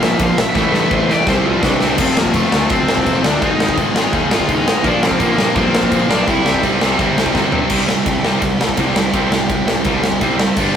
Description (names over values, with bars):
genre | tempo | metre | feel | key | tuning
punk rock | 168 BPM | 4/4 | straight | C mixolydian, C major from 7.7 s | A4 = 440 Hz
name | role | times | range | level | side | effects
overdriven electric guitar | melody | 0.0-6.6 s | A3 to F5 | -19 LUFS | left 2 dB | none
distorted electric guitar | riff | 0.0-10.7 s | F2 to C4 | -22 LUFS | left 6 dB | overdrive
heavy high-gain guitar | riff | 0.0-10.8 s | G2 to A4 | -21 LUFS | right 1 dB | distortion
sludgy distorted guitar | riff | 0.0-2.0, 4.8-10.7 s | G2 to C4 | -20 LUFS | right 5 dB | overdrive
fuzz picked electric bass | bass | 0.0-10.8 s | F1 to G2 | -22 LUFS | equal | overdrive
big rock drum kit | drums | 0.0-10.7 s | crash cymbal, kick drum, ride cymbal, snare drum, toms | -17 LUFS | equal | none
room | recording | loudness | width
light reverb | rough rehearsal-room recording, warm saturation | -13 LUFS | side -8 dB against mid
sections
0.0-2.0 A section; 2.0-7.7 B section; 7.7-10.8 C section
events
drum fill 0.6-2.0, 7.3-7.7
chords
0.0 Bb; 0.6 Am; 1.3 C; 2.0 F; 3.4 Ab; 4.8 Bb; 6.3 C